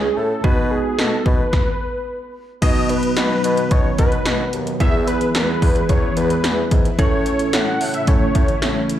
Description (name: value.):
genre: synth-pop.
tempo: 110 BPM.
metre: 4/4.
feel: straight.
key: unclear.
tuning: A4 = 441 Hz.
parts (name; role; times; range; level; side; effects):
wide unison lead; melody; 0.0-8.9 s; G#4 to F#5; -23 LUFS; equal; none.
bell-like tine electric piano; accompaniment; 0.0-9.0 s; B3 to A4; -24 LUFS; right 2 dB; medium stereo tremolo.
warm bassoon; bass; 0.0-8.8 s; D#2 to B2; -25 LUFS; equal; none.
80s electronic pad drums; drums; 0.4-9.0 s; crash cymbal, hi-hat, kick drum, snare drum; -18 LUFS; equal; none.
string machine, cellos; sustained chords; 2.6-9.0 s; E3 to B4; -25 LUFS; left 1 dB; phaser, ensemble chorus.
room: light reverb, digital ambience.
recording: played on a big sound system in a bare room, large studio reverb.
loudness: -16 LUFS.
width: side -11 dB against mid.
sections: 0.0-2.6 A section; 2.6-9.0 B section.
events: stop 1.5-2.6.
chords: 0.4 B; 4.8 E; 7.0 A.